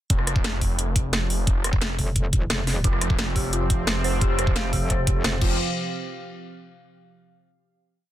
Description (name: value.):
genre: dark technical drum and bass.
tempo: 175 BPM.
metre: 4/4.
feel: straight.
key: unclear.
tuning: A4 = 440 Hz.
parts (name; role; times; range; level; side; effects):
wide detuned saw bass; bass; 0.1-5.6 s; F1; -26 LUFS; equal; chorus, overdrive.
drum and bass drum kit; drums; 0.1-5.5 s; crash cymbal, hi-hat, rim click, snare drum; -26 LUFS; equal; none.
electronic kick drum; drums; 0.1-5.5 s; none; -23 LUFS; equal; none.
metallic wobble bass; bass; 2.0-5.4 s; F1; -26 LUFS; equal; chorus.
sweeping resonant pad; sustained chords; 2.8-5.6 s; C3 to F5; -31 LUFS; right 2 dB; chorus, sidechain pumping.
dark detuned synth bell; arpeggios; 2.8-5.6 s; F4 to F5; -31 LUFS; right 1 dB; chorus, phaser, sidechain pumping, ping-pong delay.
room: little or no reverb.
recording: dense, heavily limited modern master.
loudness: -21 LUFS.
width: side -13 dB against mid.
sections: 0.1-5.6 drop; 5.6-7.0 final hit.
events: drop 0.1-5.6.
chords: 0.1 F5; 5.6 N.C..